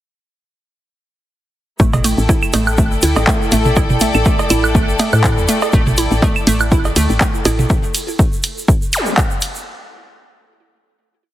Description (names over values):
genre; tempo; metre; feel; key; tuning
minimal techno; 122 BPM; 4/4; swing 55% on 16ths; unclear; A4 = 440 Hz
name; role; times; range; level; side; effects
hollow square pluck; riff; 1.8-7.5 s; A3 to E4; -20 LUFS; right 2 dB; chorus, sidechain pumping, digital delay
woody FM bass; bass; 1.8-7.7 s; A1 to A2; -17 LUFS; equal; sidechain pumping
electronic kick drum; drums; 1.8-9.3 s; none; -15 LUFS; equal; none
tube shaker; percussion; 1.8-9.6 s; none; -28 LUFS; right 2 dB; none
bright symphonic string section; texture; 1.8-7.7 s; E4 to G5; -22 LUFS; left 3 dB; sidechain pumping
pulsing gated texture; texture; 1.8-7.7 s; A4; -28 LUFS; right 2 dB; chorus, built-in reverb, sidechain pumping
electronic toms, cowbell, claves and woodblock; percussion; 1.9-7.7 s; none; -21 LUFS; right 3 dB; tape echo
punchy analog drum machine; drums; 2.0-9.5 s; handclaps, hi-hat, ride cymbal; -20 LUFS; equal; none
zap; sound effects; 8.9-9.1 s; none; -21 LUFS; left 1 dB; none
room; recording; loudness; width
light reverb, digital ambience; heavily compressed radio sound, multiband compression; -12 LUFS; side -14 dB against mid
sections
1.8-9.7 drop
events
drop 1.8-9.7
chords
1.8 A5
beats
| 1.80 2.29 2.78 3.27 | 3.77 4.26 4.75 5.24 | 5.73 6.22 6.72 7.21 | 7.70 8.19 8.68 9.18